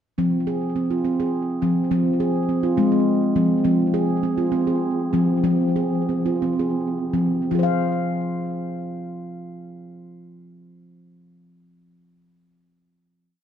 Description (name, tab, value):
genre	world meditative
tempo	52-70 BPM (dotted quarters)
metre	6/8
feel	straight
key	F minor pentatonic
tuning	A4 = 439 Hz
part	handpan	solo	0.2-12.2 s	F3 to F5	-20 LUFS	equal	tape echo
room	wet recital hall reverb, RT60 1.5 s, small room reverb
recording	none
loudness	-19 LUFS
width	side -9 dB against mid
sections	0.2-7.5 A section; 7.5-12.1 final chord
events	slowing down 3.6-7.5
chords	0.2 Fm